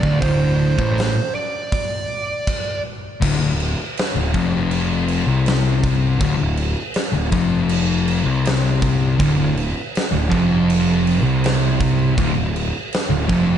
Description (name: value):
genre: stoner and doom metal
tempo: 80 BPM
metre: 4/4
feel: straight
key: D minor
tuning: A4 = 440 Hz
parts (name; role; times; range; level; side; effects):
- fuzz lead guitar; melody; 0.0-2.8 s; C5 to D5; -25 LUFS; right 3 dB; distortion, tape echo
- thick fuzz guitar; riff; 0.0-13.6 s; D2 to C3; -19 LUFS; left 5 dB; distortion
- thick fuzz guitar; riff; 0.0-1.1, 9.2-13.6 s; D2 to C3; -20 LUFS; right 12 dB; distortion
- fuzz picked electric bass; bass; 0.0-13.6 s; D1 to C2; -23 LUFS; right 1 dB; overdrive
- big rock drum kit; drums; 0.0-13.5 s; crash cymbal, hi-hat, kick drum, snare drum; -23 LUFS; right 1 dB; none
room: light reverb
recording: dark, warm production, nothing above 10.8 kHz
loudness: -16 LUFS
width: side -9 dB against mid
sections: 0.0-3.2 A section; 3.2-13.6 B section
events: none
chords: 0.0 D5; 3.2 Dm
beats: | 0.21 0.96 1.71 2.46 | 3.21 3.96 4.71 5.45 | 6.20 6.95 7.69 8.44 | 9.19 9.93 10.68 11.43 | 12.18 12.92